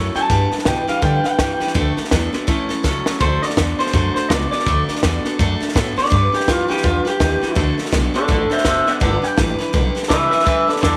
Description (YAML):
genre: rockabilly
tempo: 165 BPM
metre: 4/4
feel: swing 60% on 8ths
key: D major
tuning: A4 = 441 Hz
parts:
  - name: picked steel-string acoustic guitar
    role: accompaniment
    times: 0.0-11.0 s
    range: A2 to B4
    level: -27 LUFS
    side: equal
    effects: none
  - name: electric guitar through a small old amp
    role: riff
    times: 0.0-11.0 s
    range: G2 to B3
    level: -27 LUFS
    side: equal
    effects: spring reverb
  - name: upright bass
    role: bass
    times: 0.0-11.0 s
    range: F#1 to D3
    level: -23 LUFS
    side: equal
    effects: none
  - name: electric guitar through a small old amp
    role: melody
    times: 0.2-11.0 s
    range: F4 to A5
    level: -22 LUFS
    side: equal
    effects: spring reverb, tape echo
  - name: compact cocktail drum kit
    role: drums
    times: 0.2-10.9 s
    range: hi-hat, kick drum, snare drum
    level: -24 LUFS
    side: equal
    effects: none
room: little or no reverb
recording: none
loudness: -18 LUFS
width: mono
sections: 0.0-3.2 A section; 3.2-11.0 A section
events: drum fill 2.8-3.2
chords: 0.3 G; 1.8 D; 2.5 A; 3.2 D; 6.1 G; 7.6 D; 9.0 G